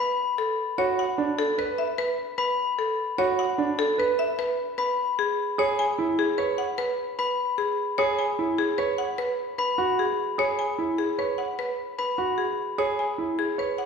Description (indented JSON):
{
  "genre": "classical, minimalist pattern music",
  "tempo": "150 BPM",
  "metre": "6/4",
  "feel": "straight",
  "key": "unclear",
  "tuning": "A4 = 440 Hz",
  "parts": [
    { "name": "buzzing marimba with hard mallets", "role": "melody", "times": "0.0-13.9 s", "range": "G#4 to G#5", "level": "-27 LUFS", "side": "left 1 dB", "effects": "none" },
    { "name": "glockenspiel with hard plastic mallets", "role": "arpeggios", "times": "0.0-12.2 s", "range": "B5", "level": "-29 LUFS", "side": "left 6 dB", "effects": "none" },
    { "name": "bright concert grand piano", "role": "arpeggios", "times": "0.8-13.8 s", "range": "D4 to C#5", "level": "-27 LUFS", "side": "right 4 dB", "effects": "none" }
  ],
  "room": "wet recital hall reverb, RT60 1.7 s",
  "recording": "heard from further back in the room",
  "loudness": "-23 LUFS",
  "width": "side -6 dB against mid",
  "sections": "0.0-13.9 A section",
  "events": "none",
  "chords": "0.0 Bm7; 5.0 C#m7"
}